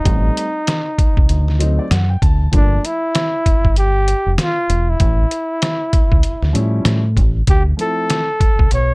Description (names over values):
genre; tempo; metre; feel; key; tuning
hip hop, jazz-hop; 97 BPM; 4/4; swing 59% on 16ths; D minor; A4 = 438 Hz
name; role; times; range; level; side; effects
breathy flugelhorn; melody; 0.0-8.9 s; D4 to C#5; -20 LUFS; equal; none
dark grand piano; accompaniment; 0.0-2.8, 6.5-8.2 s; F3 to A5; -23 LUFS; equal; none
deep dub fingered electric bass; bass; 0.1-8.9 s; E1 to A2; -16 LUFS; equal; none
trip hop sampler-style drum kit; drums; 0.1-8.9 s; hi-hat, kick drum, snare drum; -15 LUFS; equal; none
room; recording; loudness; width
little or no reverb; dark, warm production; -13 LUFS; side -27 dB against mid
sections
0.0-8.9 A section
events
grand piano fill 1.3-2.5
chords
0.1 Am7b5; 1.3 D7b9; 2.5 Gm9; 5.0 A7b13; 7.5 Dm9